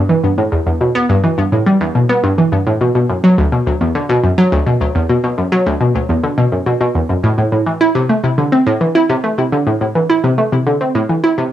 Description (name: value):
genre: ambient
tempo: 105 BPM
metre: 4/4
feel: straight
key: E minor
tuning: A4 = 436 Hz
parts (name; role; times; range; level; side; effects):
- analog pluck; solo; 0.0-11.5 s; D2 to E4; -12 LUFS; equal; chorus, cassette tape, ping-pong delay
room: wet studio reverb, RT60 0.5 s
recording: home recording on cassette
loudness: -12 LUFS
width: side -12 dB against mid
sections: 0.0-11.5 A section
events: fade-out 10.4-11.5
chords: none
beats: | 0.52 1.09 1.66 2.24 | 2.81 3.38 3.95 4.52 | 5.09 5.66 6.24 6.81 | 7.38 7.95 8.52 9.09 | 9.66 10.24 10.81 11.38